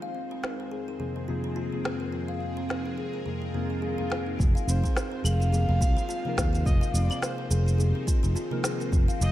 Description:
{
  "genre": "organic downtempo",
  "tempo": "106 BPM",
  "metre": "4/4",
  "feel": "swing 57% on 16ths",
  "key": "F minor",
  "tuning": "A4 = 442 Hz",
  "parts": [
    { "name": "bowed-like drone", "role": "sustained chords", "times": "0.0-9.3 s", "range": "F2 to C5", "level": "-36 LUFS", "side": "right 1 dB", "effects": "built-in reverb, phaser, sidechain pumping, shimmer reverb" },
    { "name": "kalimba", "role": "arpeggios", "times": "0.0-9.3 s", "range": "C4 to F5", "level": "-35 LUFS", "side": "left 2 dB", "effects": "diffuse ambient delay, shimmer reverb" },
    { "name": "electronic snare drum, shaker and claves", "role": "drums", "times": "0.4-9.3 s", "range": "none", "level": "-34 LUFS", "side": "equal", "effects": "none" },
    { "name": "muted felt-like synth keys", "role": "accompaniment", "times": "1.0-8.9 s", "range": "F2 to Bb4", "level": "-34 LUFS", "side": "left 1 dB", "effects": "chorus, sidechain pumping, diffuse ambient delay" },
    { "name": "swell", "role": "sound effects", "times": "3.4-4.4 s", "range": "none", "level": "-41 LUFS", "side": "left 2 dB", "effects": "none" },
    { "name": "sustaining fretless electric bass", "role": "bass", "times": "4.4-9.3 s", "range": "F1 to Eb2", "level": "-24 LUFS", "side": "equal", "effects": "sidechain pumping" },
    { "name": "electronic kick drum", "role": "drums", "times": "4.4-9.1 s", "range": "none", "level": "-24 LUFS", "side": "equal", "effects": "none" },
    { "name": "dark kamancheh", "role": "melody", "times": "4.7-9.3 s", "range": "C5 to F5", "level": "-36 LUFS", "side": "right 1 dB", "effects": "diffuse ambient delay, shimmer reverb" }
  ],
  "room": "light reverb",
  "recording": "none",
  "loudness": "-25 LUFS",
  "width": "side -14 dB against mid",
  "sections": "0.0-4.4 A section; 4.4-9.3 B section",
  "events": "swell 3.4-4.4",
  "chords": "0.0 Ab/F; 4.4 Fm7",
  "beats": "0.44 1.00 1.57 | 2.13 2.70 3.27 3.83 | 4.40 4.96 5.53 6.10 | 6.66 7.23 7.79 8.36 | 8.93"
}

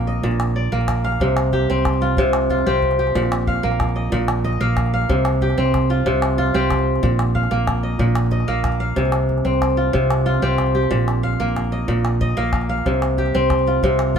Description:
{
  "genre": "west african traditional, West African string and xylophone music",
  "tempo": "124 BPM (dotted quarters)",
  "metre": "12/8",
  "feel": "straight",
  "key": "C minor",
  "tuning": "A4 = 440 Hz",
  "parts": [
    { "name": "kora", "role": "arpeggios", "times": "0.0-14.2 s", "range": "Bb2 to G5", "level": "-19 LUFS", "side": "equal", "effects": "none" },
    { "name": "fingered electric bass", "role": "bass", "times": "0.0-14.2 s", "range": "Bb1 to C2", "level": "-21 LUFS", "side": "equal", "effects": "none" },
    { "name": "calabash", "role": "percussion", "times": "0.2-14.2 s", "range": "none", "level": "-26 LUFS", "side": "left 1 dB", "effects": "none" }
  ],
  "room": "moderate stone room reverb, RT60 1.0 s",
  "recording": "band playing live in one room",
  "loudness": "-16 LUFS",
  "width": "side -7 dB against mid",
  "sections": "0.0-1.2 A section; 1.2-14.2 B section",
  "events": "none",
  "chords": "0.0 Bb; 1.2 C5; 3.1 Bb5; 5.1 C5; 7.0 Bb5; 9.0 C5; 10.9 Bb5; 12.9 C5",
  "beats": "0.23 0.72 | 1.21 1.69 2.18 2.66 | 3.15 3.63 4.12 4.60 | 5.09 5.57 6.06 6.54 | 7.03 7.51 8.00 8.48 | 8.97 9.46 9.94 10.43 | 10.91 11.40 11.88 12.37 | 12.86 13.34 13.83"
}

